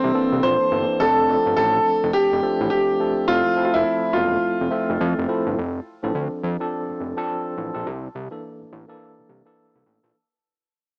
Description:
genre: R&B, new jack swing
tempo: 105 BPM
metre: 4/4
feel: swing 61% on 16ths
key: F major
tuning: A4 = 440 Hz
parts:
  - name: warm concert grand piano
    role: melody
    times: 0.0-5.2 s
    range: C4 to C5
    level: -22 LUFS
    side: equal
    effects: cassette tape
  - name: tine electric piano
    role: accompaniment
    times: 0.0-10.2 s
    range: E3 to E5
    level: -28 LUFS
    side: equal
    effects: cassette tape
  - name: fat analog bass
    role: bass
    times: 0.0-10.1 s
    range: E1 to F2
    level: -28 LUFS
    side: equal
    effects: none
room: moderate spring reverb, RT60 1.7 s, small room ambience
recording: home recording on cassette, small speaker sound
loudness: -21 LUFS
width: mono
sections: 0.0-5.6 A section; 5.6-10.1 B section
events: fade-out 5.6-10.1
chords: 0.0 C13; 1.0 F6; 3.3 Fmaj7; 5.6 F6; 7.9 C13

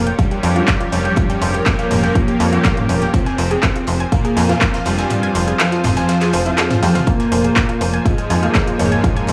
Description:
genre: melodic techno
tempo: 122 BPM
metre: 4/4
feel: straight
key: F minor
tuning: A4 = 440 Hz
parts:
  - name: soft supersaw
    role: melody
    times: 0.0-9.3 s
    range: F2 to C4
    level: -22 LUFS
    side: equal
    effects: sidechain pumping, analog delay
  - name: evolving wavetable pad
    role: sustained chords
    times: 0.0-9.3 s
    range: F3 to Ab5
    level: -28 LUFS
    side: equal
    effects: ensemble chorus, built-in reverb, sidechain pumping
  - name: tight sequencer bass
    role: bass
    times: 0.0-9.3 s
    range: F1 to F2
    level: -20 LUFS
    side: equal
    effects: tube saturation, sidechain pumping
  - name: warbly dusty pluck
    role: arpeggios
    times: 0.1-9.3 s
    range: C4 to Ab6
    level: -27 LUFS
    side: equal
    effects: chorus, sidechain pumping, analog delay
  - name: deep house drum kit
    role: drums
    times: 0.1-9.3 s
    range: handclaps, hi-hat, toms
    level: -24 LUFS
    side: equal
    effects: overdrive
  - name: electronic kick drum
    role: drums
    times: 0.2-9.1 s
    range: none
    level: -19 LUFS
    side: equal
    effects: none
  - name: loose indie drum kit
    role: drums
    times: 0.2-9.3 s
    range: hi-hat, snare drum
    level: -36 LUFS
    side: equal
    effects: none
  - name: analog synth brass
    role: stabs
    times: 0.6-9.3 s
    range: Bb2 to G4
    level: -26 LUFS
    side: equal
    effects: chorus, sidechain pumping, analog delay
room: light reverb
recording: dry, gritty hardware recording, small room ambience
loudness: -16 LUFS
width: mono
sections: 0.0-9.3 A section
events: kick drops out 5.1-7.1; drum fill 6.8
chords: 0.0 Gm7b5/F; 3.1 Fm; 7.1 Bbm7/F

